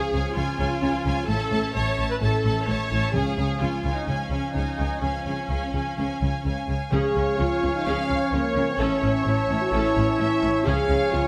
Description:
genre	cinematic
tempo	128 BPM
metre	4/4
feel	straight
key	Db major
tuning	A4 = 436 Hz
part	clear symphonic violin section	melody	0.0-11.3 s	Db5 to A5	-34 LUFS	equal	none
part	clear symphonic violin section	second line	0.0-11.3 s	Db5 to F5	-38 LUFS	equal	none
part	rich symphonic viola section	accompaniment	0.0-11.2 s	Db4 to C#5	-33 LUFS	equal	none
part	dark French horn section	sustained chords	0.0-11.3 s	E3 to Ab4	-31 LUFS	equal	none
part	timpani	percussion	0.0-0.1, 3.1-3.8, 6.9-7.6 s	Db3	-35 LUFS	equal	none
part	rich symphonic double bass section	bass	0.1-11.2 s	A1 to Db2	-30 LUFS	equal	none
part	warm symphonic cello section	bass	0.1-11.2 s	A2 to Db3	-32 LUFS	equal	none
part	clear clarinet	second line	6.9-11.3 s	Db5	-36 LUFS	equal	none
part	mellow silver concert flute	second line	6.9-11.3 s	Ab5 to A5	-36 LUFS	equal	none
part	warm oboe	second line	6.9-11.3 s	E5 to F5	-37 LUFS	equal	none
part	bright trombone section	sustained chords	6.9-11.3 s	E3 to Db4	-35 LUFS	equal	none
part	bright trumpet section	stabs	6.9-11.3 s	Db5	-32 LUFS	equal	none
room	moderate scoring stage reverb, RT60 1.9 s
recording	close, detailed microphones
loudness	-24 LUFS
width	mono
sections	0.0-6.9 A section; 6.9-11.3 A section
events	none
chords	0.0 Db; 1.3 A; 3.1 Db; 8.8 A; 10.7 Db

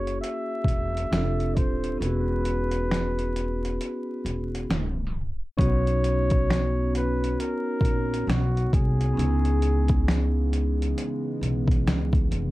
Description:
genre	lo-fi hip hop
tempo	67 BPM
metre	4/4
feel	swing 60% on 16ths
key	B major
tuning	A4 = 440 Hz
part	mellow flugelhorn	melody	0.0-10.5 s	F#4 to E5	-32 LUFS	left 1 dB	low-pass filter
part	vibraphone with medium hard mallets	accompaniment	0.0-12.5 s	A#3 to C#5	-30 LUFS	equal	low-pass filter
part	upright bass	bass	0.0-12.5 s	D#1 to C#2	-26 LUFS	equal	none
part	dusty soul sampler-style drum kit	drums	0.1-12.5 s	finger snaps, hi-hat, kick drum, snare drum	-26 LUFS	equal	overdrive
part	warbly tape-like pad	sustained chords	6.3-12.5 s	C#3 to D#4	-34 LUFS	equal	chorus, built-in reverb, low-pass filter
room	light reverb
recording	dark, warm production, vinyl crackle, tape stop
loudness	-23 LUFS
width	side -18 dB against mid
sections	0.0-5.6 A section; 5.6-12.5 B section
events	kick muted 2.0-5.6; tape stop 4.7-5.6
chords	0.0 F#9; 1.1 F69; 2.0 E69; 5.6 Bmaj9; 9.2 C#m7

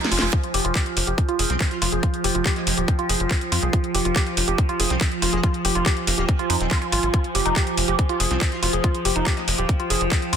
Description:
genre	psychedelic trance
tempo	141 BPM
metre	4/4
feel	straight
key	F minor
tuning	A4 = 439 Hz
part	overtone-sweeping drone	sustained chords	0.0-10.4 s	F3	-28 LUFS	right 5 dB	chorus, built-in reverb, sidechain pumping
part	woody wave-folded pluck	riff	0.0-10.4 s	Eb4 to Ab4	-27 LUFS	moving between left 5 dB and right 5 dB	chorus, auto-pan, sidechain pumping, ping-pong delay
part	garage drum kit	drums	0.0-10.4 s	handclaps, hi-hat, snare drum	-25 LUFS	equal	none
part	warbly tape-like pad	texture	0.0-10.4 s	F4 to Ab5	-30 LUFS	left 1 dB	chorus, built-in reverb, phaser, sidechain pumping
part	tight sequencer bass	bass	0.1-10.4 s	Eb1 to F2	-25 LUFS	equal	none
part	electronic kick drum	drums	0.3-10.2 s	none	-21 LUFS	equal	none
part	metallic wobble bass	second line	1.5-9.5 s	Ab3 to F4	-36 LUFS	right 2 dB	lush chorus, sidechain pumping, high-pass filter, tape echo
room	light reverb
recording	dense, heavily limited modern master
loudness	-19 LUFS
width	side -8 dB against mid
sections	0.0-10.4 A section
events	drum fill 0.0-0.3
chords	0.0 F5

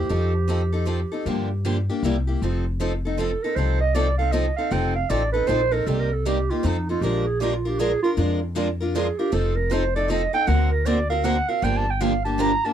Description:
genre	acoustic string swing (jazz manouche)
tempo	156 BPM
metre	3/4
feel	swing 63% on 8ths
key	F mixolydian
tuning	A4 = 440 Hz
part	picked steel-string acoustic guitar	melody	0.0-2.0 s	C5	-46 LUFS	right 1 dB	none
part	growling clarinet	second line	0.0-12.7 s	Eb4 to Bb5	-24 LUFS	right 5 dB	none
part	picked steel-string acoustic guitar	accompaniment	0.0-12.7 s	C3 to Bb4	-27 LUFS	left 4 dB	none
part	upright bass	bass	0.0-12.5 s	F1 to G2	-24 LUFS	left 1 dB	none
part	picked steel-string acoustic guitar	accompaniment	0.1-12.5 s	C3 to C5	-28 LUFS	right 8 dB	none
room	little or no reverb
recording	dry, close 1970s-style studio recording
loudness	-20 LUFS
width	side -10 dB against mid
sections	0.0-2.4 A section; 2.4-12.7 B section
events	clarinet solo 2.4-12.7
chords	0.1 F7; 1.3 Gm7; 2.0 C7; 2.4 F7; 5.9 Cm7; 6.6 F7; 7.0 Bb7; 9.3 F7; 10.5 Daug7; 11.6 Gm7

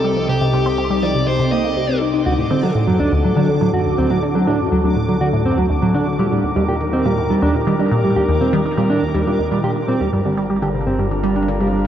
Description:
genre	ambient, sequencer-driven space music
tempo	122 BPM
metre	4/4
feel	straight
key	G minor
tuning	A4 = 439 Hz
part	dark smooth lead guitar	melody	0.0-2.0 s	G4 to Eb5	-23 LUFS	left 2 dB	overdrive, tape echo
part	evolving wavetable pad	sustained chords	0.0-11.9 s	C2 to Bb4	-22 LUFS	equal	phaser, built-in reverb
part	resonant blip pluck	riff	0.0-11.9 s	D2 to Eb4	-20 LUFS	equal	phaser, tape echo
part	bubbling stepped-filter texture	texture	0.0-11.9 s	D5 to D6	-32 LUFS	right 1 dB	chorus, built-in reverb
part	mellow electric guitar	arpeggios	2.3-11.8 s	F#3 to G4	-18 LUFS	right 2 dB	auto-pan, low-pass filter, tape echo
part	warm sub bass	bass	10.1-11.9 s	G1	-25 LUFS	equal	none
room	wet huge ambient reverb, RT60 7.8 s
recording	worn, warbling old tape, cassette tape, warbly pitch drift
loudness	-15 LUFS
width	side -10 dB against mid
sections	0.0-10.1 A section; 10.1-11.9 B section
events	filter sweep on synth arpeggio sound 0.0-10.1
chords	0.0 Cm; 2.3 D; 6.2 Eb; 10.1 Gm7

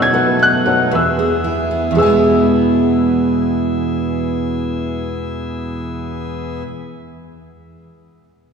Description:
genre	acoustic pop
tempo	115 BPM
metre	4/4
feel	straight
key	E major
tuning	A4 = 439 Hz
part	warm upright piano	melody	0.0-6.6 s	E6 to G#6	-18 LUFS	left 1 dB	none
part	picked steel-string acoustic guitar	accompaniment	0.0-6.8 s	E2 to E4	-17 LUFS	right 2 dB	none
part	warm upright piano	accompaniment	0.0-8.5 s	D#4 to G#5	-23 LUFS	left 4 dB	none
part	pipe organ, cornet	sustained chords	0.0-6.6 s	E3 to E5	-25 LUFS	left 2 dB	none
part	nylon-string guitar	arpeggios	0.0-3.5 s	G#4 to C#5	-20 LUFS	equal	none
room	wet church reverb, RT60 3.5 s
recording	recorded in a church or concert hall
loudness	-14 LUFS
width	side -6 dB against mid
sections	0.0-2.0 A section; 2.0-6.1 B section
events	none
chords	0.0 B7; 0.9 E

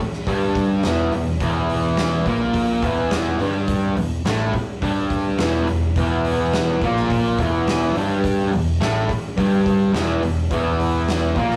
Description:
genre	garage rock duo or trio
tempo	105 BPM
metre	4/4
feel	straight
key	E minor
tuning	A4 = 440 Hz
part	oversized low-tuned drum kit	drums	0.1-11.6 s	hi-hat, kick drum, snare drum	-28 LUFS	equal	none
part	fuzz guitar	riff	0.3-11.6 s	E2 to A#3	-22 LUFS	equal	distortion
part	growling picked electric bass	bass	0.3-11.6 s	E1 to A#1	-30 LUFS	equal	overdrive
room	wet studio reverb, RT60 0.6 s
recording	rough rehearsal-room recording, warm saturation, cassette tape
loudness	-20 LUFS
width	mono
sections	0.0-11.6 A section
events	none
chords	0.0 Em

